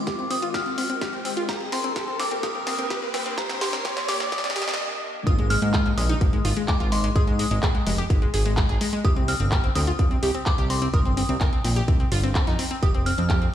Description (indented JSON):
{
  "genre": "progressive house",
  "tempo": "127 BPM",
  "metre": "4/4",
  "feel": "straight",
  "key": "unclear",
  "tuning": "A4 = 440 Hz",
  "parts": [
    { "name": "glassy synth bell", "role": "melody", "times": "0.0-13.5 s", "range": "Bb5 to F6", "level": "-30 LUFS", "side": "equal", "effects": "chorus, tremolo, sidechain pumping, digital delay" },
    { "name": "evolving wavetable pad", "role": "sustained chords", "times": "0.0-5.2 s", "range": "Eb3 to Bb4", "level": "-35 LUFS", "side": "right 1 dB", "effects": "ensemble chorus, built-in reverb, sidechain pumping" },
    { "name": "analog pluck", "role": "arpeggios", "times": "0.0-13.5 s", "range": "Ab3 to Bb4", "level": "-29 LUFS", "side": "left 1 dB", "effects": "chorus, sidechain pumping, digital delay" },
    { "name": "riser", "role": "sound effects", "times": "0.0-4.8 s", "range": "none", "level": "-32 LUFS", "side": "right 1 dB", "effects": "none" },
    { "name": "electronic kick drum", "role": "drums", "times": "0.1-13.4 s", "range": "none", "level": "-22 LUFS", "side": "equal", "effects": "none" },
    { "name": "house drum kit", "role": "drums", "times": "0.1-13.5 s", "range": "handclaps, hi-hat, snare drum", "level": "-30 LUFS", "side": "left 1 dB", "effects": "sidechain pumping on hats, high-pass filter on hats, high-pass filter on snare" },
    { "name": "fat analog bass", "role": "bass", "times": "5.3-13.5 s", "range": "F1 to Ab2", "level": "-24 LUFS", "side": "equal", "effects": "sidechain pumping" }
  ],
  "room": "light reverb",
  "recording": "played on a big sound system in a bare room, large studio reverb, high-pass filter",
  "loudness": "-21 LUFS",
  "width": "side -11 dB against mid",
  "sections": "0.0-5.3 A section; 5.3-13.5 B section",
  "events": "build-up 0.0-5.3; drum fill 0.0-4.8; riser 0.0-4.8; filter sweep on synth arpeggio sound 0.0-5.3; filter sweep on ambient pad 0.0-5.3; filter sweep 0.0-5.3; break 4.8-5.3; drop 5.3-13.5",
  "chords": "0.0 Fm7; 1.5 Ebmaj7; 5.3 Ab5; 9.0 Cm7; 12.8 F5"
}